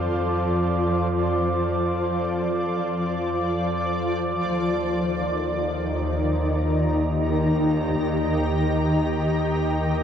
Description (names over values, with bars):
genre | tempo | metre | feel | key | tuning
ambient | free time | none | none | Eb lydian | A4 = 441 Hz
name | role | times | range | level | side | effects
shimmering ambient pad | sustained chords | 0.0-10.0 s | Eb3 to Bb5 | -22 LUFS | equal | chorus, built-in reverb
warm symphonic cello section | bass | 0.0-10.0 s | Eb2 to F2 | -28 LUFS | equal | none
analog drone | drone | 0.0-4.6 s | none | barely audible | none | none
glass harmonica | texture | 0.0-4.5 s | D6 | -33 LUFS | equal | none
room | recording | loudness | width
wet huge ambient reverb, RT60 8.3 s | worn, warbling old tape, cassette tape, warbly pitch drift | -21 LUFS | side -8 dB against mid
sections
0.0-4.5 A section; 4.5-10.0 B section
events
filter sweep on ambient pad 0.0-4.5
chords
0.0 Dm7/F; 4.5 Eb